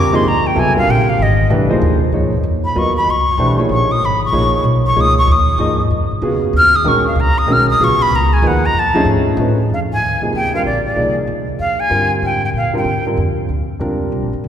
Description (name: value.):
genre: modal jazz.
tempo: 190 BPM.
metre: 3/4.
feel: swing 63% on 8ths.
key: Db mixolydian, Bb mixolydian from 9.7 s.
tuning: A4 = 438 Hz.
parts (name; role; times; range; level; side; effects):
jazz flute; melody; 0.0-13.1 s; D5 to F6; -16 LUFS; left 1 dB; none.
warm concert grand piano; accompaniment; 0.0-14.3 s; C3 to Eb5; -18 LUFS; equal; none.
upright bass; bass; 0.0-14.5 s; Ab1 to Bb2; -17 LUFS; equal; none.
room: wet church reverb, RT60 2.8 s.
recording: recorded in a church or concert hall.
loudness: -12 LUFS.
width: side -9 dB against mid.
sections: 0.0-2.1 A section; 2.1-9.7 A section; 9.7-14.5 B section.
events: flute solo 0.0-9.7.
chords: 0.0 Bb69; 1.2 Ab69; 2.1 Db9; 5.9 Ebmadd9; 8.8 F7alt; 9.7 Bb13.